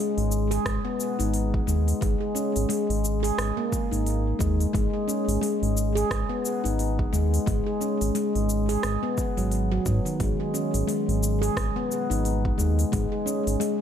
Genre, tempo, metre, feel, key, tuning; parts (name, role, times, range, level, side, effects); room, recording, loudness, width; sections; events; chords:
organic downtempo; 88 BPM; 4/4; swing 59% on 16ths; G# minor; A4 = 440 Hz
handpan; arpeggios; 0.0-13.8 s; D#3 to G#4; -26 LUFS; left 1 dB; tape echo
round analog bass; bass; 0.2-13.6 s; G#1 to G#2; -25 LUFS; right 1 dB; tube saturation
deep house drum kit; drums; 0.2-13.8 s; cabasa, hi-hat, rim click; -34 LUFS; left 1 dB; small room ambience
electronic kick drum; drums; 0.7-13.1 s; -29 LUFS; right 1 dB; overdrive, small room ambience
light reverb; -23 LUFS; side -9 dB against mid
0.0-13.8 A section
0.0 G#m; 2.0 G#sus4; 4.7 G#5; 10.2 C#sus2/G#; 12.9 G#sus4